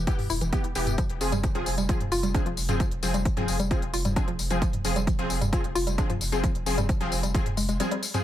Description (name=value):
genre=driving peak-time techno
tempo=132 BPM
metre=4/4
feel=straight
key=unclear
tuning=A4 = 440 Hz
part: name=woody wave-folded pluck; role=riff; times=0.0-8.0 s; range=E3 to F4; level=-32 LUFS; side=equal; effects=chorus, vintage 12-bit sampler grit, sidechain pumping, ping-pong delay
part: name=saturated sub bass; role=bass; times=0.0-7.8 s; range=E1 to F1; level=-31 LUFS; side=equal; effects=overdrive, sidechain pumping, low-pass filter
part: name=rave stab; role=stabs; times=0.1-8.2 s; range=E3 to Ab4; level=-30 LUFS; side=left 1 dB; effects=chorus, built-in reverb, sidechain pumping, ping-pong delay
part: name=electronic kick drum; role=drums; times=0.1-7.4 s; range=none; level=-27 LUFS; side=equal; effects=overdrive
part: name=techno drum kit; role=drums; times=0.1-8.2 s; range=hi-hat, tambourine, toms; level=-31 LUFS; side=equal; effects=overdrive, sidechain pumping on hats, sidechain pumping on perc, sidechain pumping on toms
room=digital ambience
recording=none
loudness=-24 LUFS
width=side -12 dB against mid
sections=0.0-8.2 A section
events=drop 0.0-8.2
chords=0.0 Em; 1.0 Fm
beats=0.07 0.53 | 0.98 1.44 1.89 2.35 | 2.80 3.25 3.71 4.16 | 4.62 5.07 5.53 5.98 | 6.44 6.89 7.34 7.80